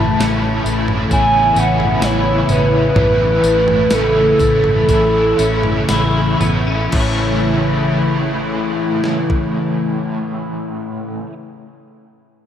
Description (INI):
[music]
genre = dream pop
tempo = 57-67 BPM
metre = 4/4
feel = straight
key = A major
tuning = A4 = 440 Hz
[part]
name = warbly nostalgic lead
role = melody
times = 0.0-5.9 s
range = A4 to A5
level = -16 LUFS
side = right 1 dB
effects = chorus, tape echo
[part]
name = overdriven electric guitar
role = accompaniment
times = 0.0-11.3 s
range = A2 to E4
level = -23 LUFS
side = right 1 dB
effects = tremolo, ensemble chorus
[part]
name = hollow soft pad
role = sustained chords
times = 0.0-11.2 s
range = C#3 to E4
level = -20 LUFS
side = equal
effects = ensemble chorus
[part]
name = electric guitar at the edge of break-up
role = arpeggios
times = 0.0-11.3 s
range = A2 to E4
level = -23 LUFS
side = left 4 dB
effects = ensemble chorus, tape echo
[part]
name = vintage muted fingered electric bass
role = bass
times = 0.0-11.2 s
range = A1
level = -21 LUFS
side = equal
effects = none
[part]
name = clean 12-bit digital drum machine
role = drums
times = 0.2-9.5 s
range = crash cymbal, kick drum, snare drum, tambourine, toms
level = -22 LUFS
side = equal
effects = none
[part]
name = vibraphone with medium mallets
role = texture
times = 1.1-11.2 s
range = C#5 to E5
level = -30 LUFS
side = right 2 dB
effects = tape echo
[sound]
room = wet plate reverb, RT60 3.2 s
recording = dreamy mix soaked in reverb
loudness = -13 LUFS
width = side -9 dB against mid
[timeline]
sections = 0.0-6.9 A section; 6.9-11.1 B section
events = slowing down 0.0-6.9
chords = 0.0 A